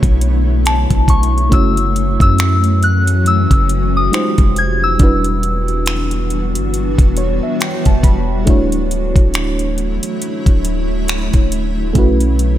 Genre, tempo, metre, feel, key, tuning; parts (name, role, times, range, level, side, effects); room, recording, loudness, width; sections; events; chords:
contemporary R&B; 69 BPM; 4/4; swing 58% on 16ths; E dorian; A4 = 436 Hz
mellow FM electric piano; accompaniment; 0.0-12.6 s; G3 to B5; -21 LUFS; right 2 dB; chorus
granular cloud pad; sustained chords; 0.0-12.6 s; D3 to C#5; -21 LUFS; left 2 dB; built-in reverb
long sustained 808-style bass; bass; 0.0-12.6 s; D1 to F#2; -16 LUFS; equal
smooth R&B drum kit; drums; 0.0-12.6 s; finger snaps, hi-hat, kick drum; -14 LUFS; equal
soft synth bell; melody; 0.7-6.5 s; A5 to Ab6; -19 LUFS; left 2 dB; chorus, ping-pong delay
digital ambience; -12 LUFS; side -12 dB against mid
0.0-12.6 A section
FM electric piano fill 6.7-8.5
0.0 Bm11; 1.5 F#m7; 4.1 Fm9; 5.0 Em9; 8.5 Dmaj9; 12.0 B7sus4